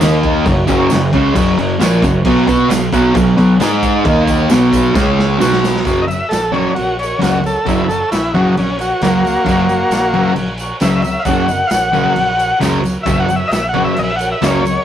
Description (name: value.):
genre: garage rock duo or trio.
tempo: 133 BPM.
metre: 4/4.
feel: straight.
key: F# mixolydian from 5.9 s.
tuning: A4 = 440 Hz.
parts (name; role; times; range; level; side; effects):
combo organ; sustained chords; 0.0-14.8 s; D#4 to G#5; -25 LUFS; right 2 dB; phaser.
fuzz guitar; riff; 0.0-14.6 s; F#2 to B4; -13 LUFS; equal; distortion.
growling fingered electric bass; bass; 0.0-14.8 s; F#1 to B2; -24 LUFS; equal; overdrive.
raw garage drum kit; drums; 0.0-14.8 s; crash cymbal, kick drum, snare drum; -21 LUFS; equal; none.
tambourine; percussion; 0.0-14.8 s; none; -33 LUFS; right 5 dB; none.
overdriven combo organ; melody; 6.0-14.8 s; A#3 to F#5; -16 LUFS; equal; none.
room: moderate studio reverb, RT60 0.6 s.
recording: rough rehearsal-room recording.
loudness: -11 LUFS.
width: side -10 dB against mid.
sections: 0.0-5.9 A section; 5.9-14.8 B section.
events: drum fill 5.0-5.9; transistor combo organ solo 5.9-14.8.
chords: 0.0 D#5; 0.5 F#; 2.3 B5; 3.6 G#5; 4.1 D#5; 4.5 B5; 5.0 C#5; 5.4 B5; 5.9 F#.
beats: 0.01 | 0.46 0.91 1.36 1.81 | 2.26 2.71 3.15 3.60 | 4.05 4.50 4.95 5.40 | 5.85 6.30 6.75 7.21 | 7.66 8.11 8.56 9.01 | 9.46 9.91 10.36 10.81 | 11.27 11.72 12.17 12.62 | 13.07 13.53 13.98 14.43.